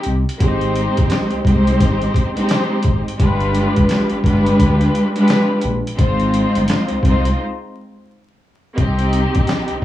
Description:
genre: hip hop, boom-bap hip-hop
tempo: 86 BPM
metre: 4/4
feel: swing 63% on 16ths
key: unclear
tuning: A4 = 441 Hz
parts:
  - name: warm studio string section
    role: accompaniment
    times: 0.0-9.8 s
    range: Ab3 to C5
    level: -17 LUFS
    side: equal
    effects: cassette tape, high-pass filter, low-pass filter, plate reverb
  - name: boom bap sampler-style drum kit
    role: drums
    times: 0.0-9.8 s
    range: handclaps, hi-hat, kick drum, snare drum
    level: -19 LUFS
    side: equal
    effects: none
  - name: smooth synth bass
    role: bass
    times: 0.1-9.8 s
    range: F1 to D2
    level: -19 LUFS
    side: equal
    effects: none
room: light reverb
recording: vinyl crackle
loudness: -14 LUFS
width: side -13 dB against mid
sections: 0.0-9.8 A section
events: break 7.4-8.8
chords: 0.4 Abmaj7; 3.2 G7b9; 6.0 Fm7; 8.8 Cm

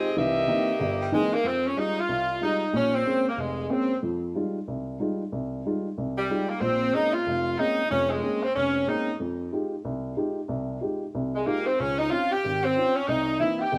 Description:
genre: jazz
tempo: 186 BPM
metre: 4/4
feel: swing 62% on 8ths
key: F minor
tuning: A4 = 440 Hz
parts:
  - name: edgy saxophone section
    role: melody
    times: 0.0-4.0, 6.2-9.1, 11.4-13.8 s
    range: G3 to E5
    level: -27 LUFS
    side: equal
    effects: none
  - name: dark upright piano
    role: accompaniment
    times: 0.0-13.8 s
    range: F1 to G4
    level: -31 LUFS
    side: equal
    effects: none
room: moderate echo chamber reverb, RT60 1.5 s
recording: worn, warbling old tape, cassette tape, warbly pitch drift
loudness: -26 LUFS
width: mono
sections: 0.0-1.4 A section; 1.4-13.8 B section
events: none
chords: 0.2 C7#9; 1.4 Fm9; 2.7 Bbm9; 4.0 Fm9; 6.6 Bbm9; 9.2 Fm9; 11.8 Dbmaj7; 13.1 C7#9

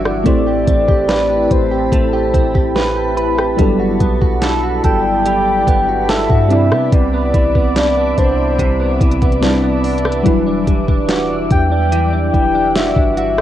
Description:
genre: contemporary R&B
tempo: 72 BPM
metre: 4/4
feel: straight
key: unclear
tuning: A4 = 440 Hz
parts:
  - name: mellow FM electric piano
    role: accompaniment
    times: 0.0-13.4 s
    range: F#3 to D5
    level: -20 LUFS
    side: left 1 dB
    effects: chorus, phaser, cassette tape, plate reverb
  - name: glassy FM pad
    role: sustained chords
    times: 0.0-13.4 s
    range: C4 to D6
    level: -23 LUFS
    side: left 4 dB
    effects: ensemble chorus, built-in reverb, sidechain pumping, cassette tape, plate reverb
  - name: direct-recorded clean electric guitar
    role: arpeggios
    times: 0.0-13.4 s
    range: C3 to B4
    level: -19 LUFS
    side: right 4 dB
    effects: analog chorus, cassette tape, plate reverb
  - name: clean 808-style bass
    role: bass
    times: 0.0-13.4 s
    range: D1 to C3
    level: -20 LUFS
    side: equal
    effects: none
  - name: smooth R&B drum kit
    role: drums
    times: 0.1-13.4 s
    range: hi-hat, kick drum, rim click, snare drum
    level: -16 LUFS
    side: equal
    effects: cassette tape
  - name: soft octave-layered synth lead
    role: melody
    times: 0.3-13.4 s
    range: C5 to G5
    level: -18 LUFS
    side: left 1 dB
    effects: chorus, cassette tape, tape echo, plate reverb
room: light reverb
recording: home recording on cassette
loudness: -12 LUFS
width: side -12 dB against mid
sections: 0.0-13.4 A section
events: none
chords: 0.3 Am9; 3.6 Gmaj9; 6.5 Cmaj9; 10.3 Em9

